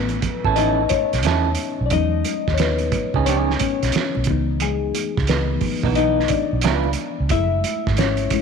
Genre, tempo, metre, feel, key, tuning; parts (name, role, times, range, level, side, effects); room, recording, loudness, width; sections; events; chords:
R&B, neo-soul; 89 BPM; 4/4; swing 64% on 16ths; E major; A4 = 437 Hz
reed electric piano; accompaniment; 0.0-8.4 s; E3 to E5; -22 LUFS; left 10 dB; phaser
vintage muted fingered electric bass; bass; 0.0-8.3 s; F#1 to E2; -22 LUFS; right 1 dB
cloth-damped thuddy drum kit; drums; 0.1-8.4 s; hi-hat, kick drum, snare drum; -24 LUFS; right 6 dB
congas; percussion; 0.2-8.4 s; -34 LUFS; right 12 dB
electric guitar through a small old amp; second line; 0.5-6.9 s; E3 to B4; -24 LUFS; right 11 dB
moderate echo chamber reverb, RT60 2.3 s; 1960s-style stereo with parts hard left and right; -18 LUFS; side -6 dB against mid
0.0-8.4 A section
reed electric piano solo 0.0-8.4
0.0 B9sus4; 1.9 Emaj13; 4.3 C#m9; 6.6 C#7b9; 7.3 F#m9